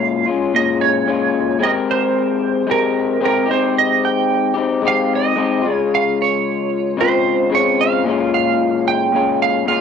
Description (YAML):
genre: indie pop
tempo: 112 BPM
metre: 4/4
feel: straight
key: Ab major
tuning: A4 = 439 Hz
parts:
  - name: clean lap steel guitar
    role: melody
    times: 0.0-9.8 s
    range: Bb4 to G5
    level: -18 LUFS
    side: right 10 dB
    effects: analog chorus, cassette tape
  - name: electric guitar through a small old amp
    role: accompaniment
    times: 0.0-9.8 s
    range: Bb2 to Bb4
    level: -17 LUFS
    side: left 6 dB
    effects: wide subtle chorus, warbly pitch drift, cassette tape
room: moderate studio reverb, RT60 0.6 s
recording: home recording on cassette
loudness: -14 LUFS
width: side -7 dB against mid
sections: 0.0-9.8 A section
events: none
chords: 0.0 Bbm7; 1.6 Abmaj9; 3.5 Abmaj7; 5.6 Dbmaj7; 8.1 Bbm7